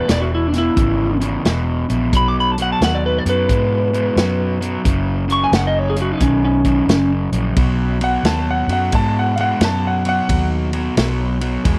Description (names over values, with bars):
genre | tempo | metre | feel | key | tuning
electric blues shuffle | 88 BPM | 4/4 | swing 65% on 8ths | B major | A4 = 441 Hz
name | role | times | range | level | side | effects
electric guitar at the edge of break-up | melody | 0.0-7.1 s | C#4 to D6 | -21 LUFS | equal | none
crunchy overdriven guitar | riff | 0.0-11.8 s | E2 to G#3 | -24 LUFS | equal | none
vintage muted fingered electric bass | bass | 0.1-11.8 s | E1 to G#2 | -23 LUFS | equal | none
warm soul drum kit | drums | 0.1-11.8 s | hi-hat, kick drum, ride cymbal, snare drum | -22 LUFS | equal | none
clear upright piano | second line | 8.0-10.4 s | E#5 to A5 | -23 LUFS | equal | none
room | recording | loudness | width
light reverb, small room ambience | none | -17 LUFS | mono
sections
0.0-7.6 A section; 7.6-11.8 B section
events
upright piano solo 7.6-11.8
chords
0.0 E; 2.1 B; 4.9 F#5; 7.6 B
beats
0.09 0.77 1.45 | 2.13 2.81 3.49 4.17 | 4.85 5.53 6.21 6.89 | 7.57 8.25 8.93 9.61 | 10.29 10.97 11.65